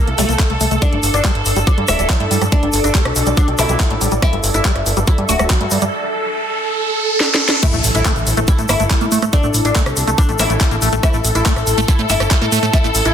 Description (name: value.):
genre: psychedelic trance.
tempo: 141 BPM.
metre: 4/4.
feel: straight.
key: unclear.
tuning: A4 = 439 Hz.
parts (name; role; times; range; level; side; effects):
oud; melody; 0.0-13.1 s; A3 to F#4; -22 LUFS; left 2 dB; phaser, sidechain pumping, ping-pong delay.
swarming drone; sustained chords; 0.0-13.1 s; A4; -22 LUFS; right 1 dB; built-in reverb, sidechain pumping.
airy breathy pad; texture; 0.0-13.1 s; D4 to A5; -28 LUFS; equal; chorus, phaser, sidechain pumping.
liquid acid bass; riff; 0.1-12.9 s; F#3 to Bb3; -23 LUFS; moving between left 8 dB and right 7 dB; phaser, auto-pan, sidechain pumping, ping-pong delay.
fat analog bass; bass; 0.1-13.1 s; D1 to A2; -19 LUFS; equal; none.
garage drum kit; drums; 0.1-13.1 s; crash cymbal, handclaps, hi-hat, rim click, snare drum; -21 LUFS; right 1 dB; overdrive.
tube shaker; percussion; 0.2-13.1 s; none; -25 LUFS; left 4 dB; none.
electronic kick drum; drums; 0.4-12.8 s; none; -14 LUFS; equal; overdrive.
zap, riser and impact; sound effects; 3.6-10.5 s; none; -24 LUFS; equal; none.
room: light reverb.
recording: dense, heavily limited modern master.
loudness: -13 LUFS.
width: side -9 dB against mid.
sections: 0.0-7.6 A section; 7.6-13.1 B section.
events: filter sweep on acid bass 0.0-7.6; riser 5.7-7.6; drum fill 7.2-7.6; drop 7.6-13.1; impact 7.6-9.3.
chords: 0.0 A5; 0.8 G5; 7.6 A5.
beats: 0.39 | 0.82 1.25 1.67 2.10 | 2.52 2.95 3.37 3.80 | 4.22 4.65 5.08 5.50 | 5.93 6.35 6.78 7.20 | 7.63 8.05 8.48 8.90 | 9.33 9.76 10.18 10.61 | 11.03 11.46 11.88 12.31 | 12.73.